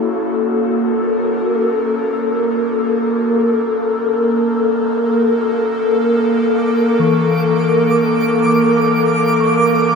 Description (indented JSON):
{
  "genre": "ambient",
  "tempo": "free time",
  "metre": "none",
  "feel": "none",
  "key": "unclear",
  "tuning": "A4 = 440 Hz",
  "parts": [
    { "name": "airy breathy pad", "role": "sustained chords", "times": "0.0-10.0 s", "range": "A#3 to A#4", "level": "-14 LUFS", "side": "left 1 dB", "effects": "chorus" },
    { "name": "muted felt-like synth keys", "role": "arpeggios", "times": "0.0-10.0 s", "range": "E3 to D6", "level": "-24 LUFS", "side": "left 2 dB", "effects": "chorus, ping-pong delay" },
    { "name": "twinkling granular texture", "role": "texture", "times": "6.6-10.0 s", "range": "D6", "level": "-21 LUFS", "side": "right 4 dB", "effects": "built-in reverb, lush chorus" }
  ],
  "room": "wet cathedral reverb, RT60 6.6 s",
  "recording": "dreamy mix soaked in reverb",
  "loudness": "-13 LUFS",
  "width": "side -5 dB against mid",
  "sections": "0.0-10.0 A section",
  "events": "fade-in on synth keys 0.0-10.0",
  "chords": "0.0 F#7#9",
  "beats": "free time"
}